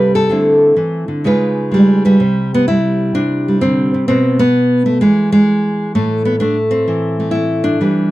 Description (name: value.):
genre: solo jazz.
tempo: 128 BPM.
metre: 4/4.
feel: swing 68% on 8ths, rubato.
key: C major.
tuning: A4 = 441 Hz.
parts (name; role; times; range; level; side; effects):
nylon-string guitar; solo; 0.0-8.1 s; A2 to B4; -11 LUFS; equal; none.
room: light reverb.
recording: dry, close 1970s-style studio recording.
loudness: -12 LUFS.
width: side -17 dB against mid.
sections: 0.0-2.2 A section; 2.2-8.1 B section.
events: nylon-string guitar solo 0.0-2.2.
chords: 0.3 Dsus2; 1.2 Db9; 2.2 Cadd9; 4.1 N.C.; 5.9 Am.